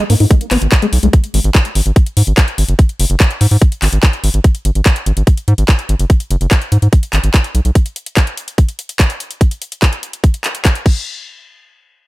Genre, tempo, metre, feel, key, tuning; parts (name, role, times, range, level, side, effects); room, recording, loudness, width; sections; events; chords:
psychedelic trance; 145 BPM; 4/4; straight; G# minor; A4 = 444 Hz
liquid acid bass; riff; 0.0-1.1 s; G#3 to D#4; -17 LUFS; left 2 dB; chorus, auto-pan, sidechain pumping, digital delay
garage drum kit; drums; 0.0-10.9 s; crash cymbal, handclaps, hi-hat; -19 LUFS; left 1 dB
round analog bass; bass; 0.1-7.7 s; F#1 to G#2; -12 LUFS; equal
electronic kick drum; drums; 0.3-10.9 s; -10 LUFS; equal
little or no reverb; -11 LUFS; side -19 dB against mid
0.0-11.1 A section; 11.1-12.1 B section
filter sweep on acid bass 0.0-1.1
0.0 G#5; 10.9 N.C.